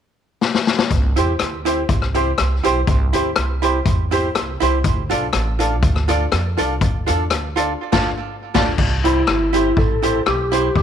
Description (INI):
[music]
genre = ska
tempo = 122 BPM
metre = 4/4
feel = straight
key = C major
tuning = A4 = 442 Hz
[part]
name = street-band drum kit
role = drums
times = 0.4-10.8 s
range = crash cymbal, hi-hat, kick drum, rim click, snare drum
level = -20 LUFS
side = left 3 dB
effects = none
[part]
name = upright bass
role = bass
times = 0.9-10.8 s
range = G1 to F2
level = -21 LUFS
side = right 1 dB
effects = none
[part]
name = archtop guitar, miked and amplified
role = accompaniment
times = 1.2-10.7 s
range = E4 to D5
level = -22 LUFS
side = right 12 dB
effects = tape echo
[part]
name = bright upright piano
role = stabs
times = 1.2-10.7 s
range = C4 to A4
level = -25 LUFS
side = left 10 dB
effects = none
[part]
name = percussive tonewheel organ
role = melody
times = 9.1-10.8 s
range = E4 to A4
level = -19 LUFS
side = left 1 dB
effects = fast rotary speaker
[sound]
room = light reverb, studio reverb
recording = 1960s-style stereo with parts hard left and right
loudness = -16 LUFS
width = side -8 dB against mid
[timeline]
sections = 0.9-8.8 A section; 8.8-10.8 B section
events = drum fill 0.4-0.9; band accent 7.8-8.8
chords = 0.0 N.C.; 0.9 C; 4.8 Dm; 8.8 C